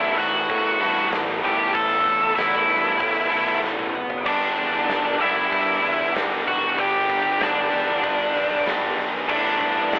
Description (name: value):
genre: quiet-loud alternative rock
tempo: 96 BPM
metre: 4/4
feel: straight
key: unclear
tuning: A4 = 440 Hz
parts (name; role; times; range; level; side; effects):
- octave-fuzz lead guitar; melody; 0.0-10.0 s; D4 to A5; -20 LUFS; equal; distortion
- distorted electric guitar; riff; 0.0-10.0 s; G3 to A4; -26 LUFS; equal; overdrive
- sludgy distorted guitar; riff; 0.0-10.0 s; E3 to A4; -30 LUFS; left 1 dB; overdrive
- thick fuzz guitar; riff; 0.0-10.0 s; G2 to A3; -32 LUFS; right 1 dB; none
- fuzz picked electric bass; bass; 0.0-10.0 s; E1 to A2; -31 LUFS; equal; overdrive
- huge arena drum kit; drums; 0.2-10.0 s; crash cymbal, hi-hat, kick drum, snare drum, toms; -28 LUFS; equal; none
room: moderate large studio reverb, RT60 0.8 s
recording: band playing live in one room, telephone sound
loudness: -18 LUFS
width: side -30 dB against mid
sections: 0.0-10.0 A section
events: drum fill 3.6-4.3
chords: 0.0 Asus2; 4.3 G; 9.3 Asus2